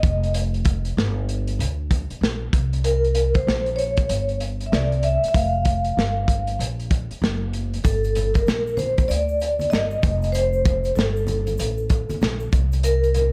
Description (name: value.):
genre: hip hop, jazz-hop.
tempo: 96 BPM.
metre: 4/4.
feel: swing 64% on 16ths.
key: unclear.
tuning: A4 = 440 Hz.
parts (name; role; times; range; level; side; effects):
vibraphone with soft mallets; accompaniment; 0.0-13.3 s; A4 to F5; -26 LUFS; equal; none.
upright bass; bass; 0.0-13.3 s; F1 to D2; -26 LUFS; equal; none.
crunchy breakbeat drum kit; drums; 0.0-13.3 s; hi-hat, kick drum, snare drum; -25 LUFS; equal; none.
tube shaker and congas; percussion; 7.8-13.3 s; none; -37 LUFS; equal; none.
room: small room ambience.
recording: dark, warm production.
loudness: -22 LUFS.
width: mono.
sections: 0.0-13.3 A section.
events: vibraphone solo 0.0-13.3; break 0.3-2.8.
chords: 0.0 Fsus2; 2.5 C5; 4.7 Csus2; 5.3 Fsus24; 7.2 N.C.; 7.8 Gm; 10.0 Fadd9; 12.5 C7(no3).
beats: | 0.34 0.97 1.59 2.22 | 2.84 3.47 4.09 4.72 | 5.34 5.97 6.59 7.22 | 7.84 8.47 9.09 9.72 | 10.34 10.97 11.59 12.22 | 12.84.